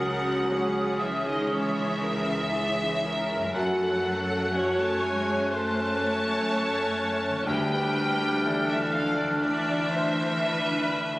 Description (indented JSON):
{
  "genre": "cinematic, emotional film score for orchestra",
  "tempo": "61 BPM",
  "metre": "4/4",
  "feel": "rubato",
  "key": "unclear",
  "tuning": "A4 = 441 Hz",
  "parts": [
    { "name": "rich studio violin section", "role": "melody", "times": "0.0-11.2 s", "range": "D5 to A5", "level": "-31 LUFS", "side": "left 1 dB", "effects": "none" },
    { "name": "mellow silver concert flute", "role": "second line", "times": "0.0-11.0 s", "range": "Eb6 to Gb6", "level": "-33 LUFS", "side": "equal", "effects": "none" },
    { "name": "rich studio violin section", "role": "second line", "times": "0.0-11.2 s", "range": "Ab3 to D4", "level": "-35 LUFS", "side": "equal", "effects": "none" },
    { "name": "warm clarinet", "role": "second line", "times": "0.0-11.1 s", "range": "Db4 to D4", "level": "-34 LUFS", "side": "equal", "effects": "none" },
    { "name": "bright concert grand piano", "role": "accompaniment", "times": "0.0-11.2 s", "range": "Db2 to D5", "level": "-32 LUFS", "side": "equal", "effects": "none" },
    { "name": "rich studio viola section", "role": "accompaniment", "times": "0.0-11.2 s", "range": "Ab4 to D5", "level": "-33 LUFS", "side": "equal", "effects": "none" },
    { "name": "mellow French horn section", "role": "sustained chords", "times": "0.0-11.2 s", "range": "D4 to A4", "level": "-33 LUFS", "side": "left 1 dB", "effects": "none" },
    { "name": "concert harp", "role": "arpeggios", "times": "0.0-11.2 s", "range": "Gb2 to D5", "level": "-44 LUFS", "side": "left 1 dB", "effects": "none" },
    { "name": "rich studio cello section", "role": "bass", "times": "0.0-11.2 s", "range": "D3 to A3", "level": "-35 LUFS", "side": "right 1 dB", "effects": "none" },
    { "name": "rich studio double bass section", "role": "bass", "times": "0.0-11.2 s", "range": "Db2 to Gb2", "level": "-36 LUFS", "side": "right 1 dB", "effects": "none" }
  ],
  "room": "moderate scoring stage reverb, RT60 1.9 s",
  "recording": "recorded on a phone in the room, club reverb",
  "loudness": "-24 LUFS",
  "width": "side -19 dB against mid",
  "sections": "0.0-11.2 A section",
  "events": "none",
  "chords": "0.0 Dbmadd9; 3.5 Gbm; 7.5 Dmadd9"
}